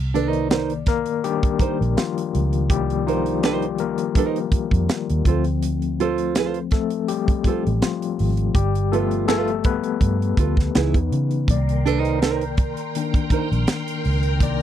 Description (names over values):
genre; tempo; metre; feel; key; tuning
R&B, neo-soul; 82 BPM; 4/4; swing 54% on 16ths; C dorian; A4 = 440 Hz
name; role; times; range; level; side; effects
vintage muted fingered electric bass; bass; 0.0-14.6 s; G1 to Db3; -23 LUFS; right 1 dB; none
nylon-string guitar; second line; 0.1-13.5 s; Eb4 to C5; -22 LUFS; right 10 dB; none
overdriven tine electric piano; accompaniment; 0.1-14.6 s; Eb3 to D5; -24 LUFS; left 9 dB; medium tremolo
tight funk drum kit; drums; 0.2-14.6 s; hi-hat, kick drum, snare drum; -21 LUFS; right 1 dB; none
phased string machine; sustained chords; 11.5-14.6 s; Bb4 to C6; -30 LUFS; right 2 dB; ensemble chorus, phaser
room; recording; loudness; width
little or no reverb; dry, close 1970s-style studio recording; -19 LUFS; side -10 dB against mid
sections
0.0-14.6 A section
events
tine electric piano solo 0.0-14.6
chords
0.0 Cm7; 5.3 Dm7; 8.5 G9; 10.7 Dbm7; 11.5 Cm7